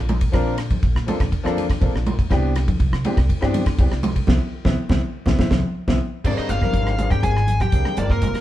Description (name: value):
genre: electric jazz fusion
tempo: 122 BPM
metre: 4/4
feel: straight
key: unclear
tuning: A4 = 440 Hz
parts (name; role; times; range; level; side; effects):
- warm grand piano; accompaniment; 0.0-8.4 s; E3 to C5; -26 LUFS; left 2 dB; none
- upright bass; bass; 0.0-8.3 s; F1 to C3; -22 LUFS; equal; none
- damped 70s drum kit; drums; 0.1-8.4 s; crash cymbal, hi-hat, kick drum, ride cymbal, rim click, snare drum; -22 LUFS; equal; none
- congas; percussion; 0.1-8.3 s; none; -27 LUFS; right 1 dB; none
- bluesy overdriven lead guitar; melody; 6.3-8.4 s; Bb4 to Ab5; -25 LUFS; equal; distortion
- vintage hollow-body jazz guitar; second line; 6.3-8.4 s; Bb3 to Ab4; -31 LUFS; left 1 dB; none
room: moderate studio reverb, RT60 0.9 s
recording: band playing live in one room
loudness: -18 LUFS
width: side -13 dB against mid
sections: 0.0-6.2 A section; 6.2-8.4 B section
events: band accent 4.3-6.2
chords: 0.0 Bbmaj9; 2.3 Cmaj9; 6.2 Abmaj9#11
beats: | 0.34 0.83 1.32 1.82 | 2.31 2.80 3.29 3.78 | 4.28 4.77 5.26 5.75 | 6.25 6.74 7.24 7.73 | 8.22